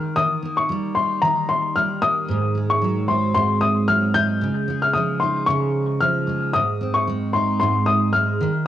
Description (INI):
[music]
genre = acoustic pop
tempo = 113 BPM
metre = 4/4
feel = swing 55% on 16ths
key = Ab major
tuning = A4 = 440 Hz
[part]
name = dark upright piano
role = melody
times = 0.0-8.7 s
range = Bb5 to G6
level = -20 LUFS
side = left 3 dB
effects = cassette tape
[part]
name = picked steel-string acoustic guitar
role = accompaniment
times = 0.0-8.7 s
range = Ab2 to Eb4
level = -22 LUFS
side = right 2 dB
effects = double-tracked left and right
[sound]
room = moderate small room reverb, RT60 0.6 s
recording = home recording on cassette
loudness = -18 LUFS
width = side -12 dB against mid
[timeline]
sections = 0.0-8.7 A section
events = none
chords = 0.0 Eb; 2.3 Ab7; 4.4 Dbadd9; 6.5 Ab